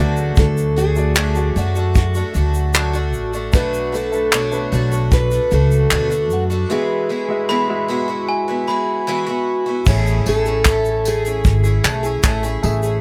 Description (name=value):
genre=acoustic pop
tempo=76 BPM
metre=4/4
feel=straight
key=A major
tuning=A4 = 439 Hz
part: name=picked steel-string acoustic guitar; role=melody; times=0.0-13.0 s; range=F#4 to C#5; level=-25 LUFS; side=equal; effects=tape echo
part: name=picked twelve-string acoustic guitar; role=accompaniment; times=0.0-13.0 s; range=B2 to G#4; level=-26 LUFS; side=equal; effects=none
part: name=warm baby grand piano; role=accompaniment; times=0.0-13.0 s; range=G#3 to G#5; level=-31 LUFS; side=equal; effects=none
part: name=upright bass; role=bass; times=0.0-13.0 s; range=G#1 to F#2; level=-21 LUFS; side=equal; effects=none
part: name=tube shaker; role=percussion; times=0.2-13.0 s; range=none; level=-39 LUFS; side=equal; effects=none
part: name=soft brush drum kit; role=drums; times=0.4-12.8 s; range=crash cymbal, handclaps, kick drum, tambourine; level=-18 LUFS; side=equal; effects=none
part: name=glockenspiel with hard plastic mallets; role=second line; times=7.5-9.8 s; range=G#5 to B5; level=-26 LUFS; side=equal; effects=none
room=light reverb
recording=none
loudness=-18 LUFS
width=mono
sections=0.0-9.9 A section; 9.9-13.0 B section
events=break 6.7-9.9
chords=0.0 D; 3.5 Bm7; 6.7 Eadd9; 9.9 Amaj7